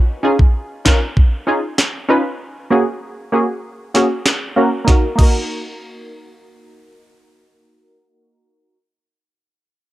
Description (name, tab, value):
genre	dancehall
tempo	97 BPM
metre	4/4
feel	straight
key	Eb minor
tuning	A4 = 440 Hz
part	punchy chord stab	accompaniment	0.2-8.8 s	Bb3 to Cb5	-17 LUFS	equal	chorus, sidechain pumping, low-pass filter, cassette tape
part	afro-pop drum kit	drums	0.4-5.4 s	crash cymbal, handclaps, kick drum, rim click, snare drum	-14 LUFS	equal	cassette tape
room	light reverb, digital ambience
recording	home recording on cassette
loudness	-14 LUFS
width	side -16 dB against mid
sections	0.0-4.9 A section; 4.9-7.4 B section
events	filter sweep on synth stab 0.0-4.9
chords	0.0 Dbadd9; 2.4 Gbadd9; 4.9 Ebm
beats	0.55 1.17 1.78 | 2.40 3.02 3.64 4.26 | 4.88 5.50 6.12 6.73